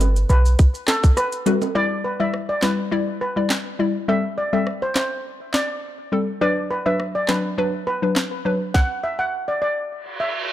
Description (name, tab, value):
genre	dancehall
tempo	103 BPM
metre	4/4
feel	straight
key	E minor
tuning	A4 = 443 Hz
part	clean 808-style bass	bass	0.0-0.6 s	G1 to B1	-16 LUFS	equal	none
part	island pop drum kit	drums	0.0-8.9 s	handclaps, hi-hat, kick drum, rim click, snare drum	-20 LUFS	equal	none
part	timbales and maracas	percussion	0.0-1.7 s	none	-28 LUFS	right 8 dB	none
part	steel pan	melody	0.3-10.3 s	A4 to F#5	-24 LUFS	equal	ping-pong delay
part	hollow square pluck	accompaniment	1.5-8.6 s	F#3 to D5	-22 LUFS	left 3 dB	chorus, sidechain pumping
part	reverse cymbal	sound effects	10.0-10.5 s	none	-26 LUFS	right 3 dB	none
room	light reverb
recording	dark, warm production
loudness	-19 LUFS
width	side -13 dB against mid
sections	0.0-1.8 A section; 1.8-10.5 B section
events	reverse cymbal 10.0-10.5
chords	0.0 Gmaj7; 1.8 Em7; 4.1 Am7; 6.4 D6; 8.7 N.C.